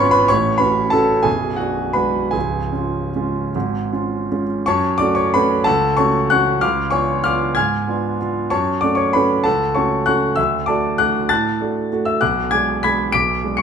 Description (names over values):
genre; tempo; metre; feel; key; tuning
classical, piano waltz; 144-210 BPM; 3/4; rubato; F# minor; A4 = 440 Hz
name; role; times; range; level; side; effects
clear grand piano; solo; 0.0-13.6 s; B0 to D7; -16 LUFS; equal; none
room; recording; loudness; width
wet large studio reverb, RT60 1.2 s; minimal, uncompressed stereo recording; -16 LUFS; side -7 dB against mid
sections
0.0-4.7 A section; 4.7-13.6 B section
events
none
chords
0.3 F#m/A; 1.3 G#m7b5/B; 2.3 C#; 4.7 F#m; 6.6 C#7b9; 8.5 F#m; 10.4 D; 12.2 G#m7b5/B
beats
| 0.29 0.61 0.93 | 1.26 1.59 1.96 | 2.34 2.73 3.15 | 3.54 3.92 4.29 | 4.66 4.99 5.33 | 5.66 5.98 6.31 | 6.63 6.93 7.26 | 7.57 7.87 8.19 | 8.50 8.82 9.14 | 9.45 9.75 10.07 | 10.38 10.69 11.01 | 11.30 11.60 11.91 | 12.21 12.51 12.83 | 13.13 13.44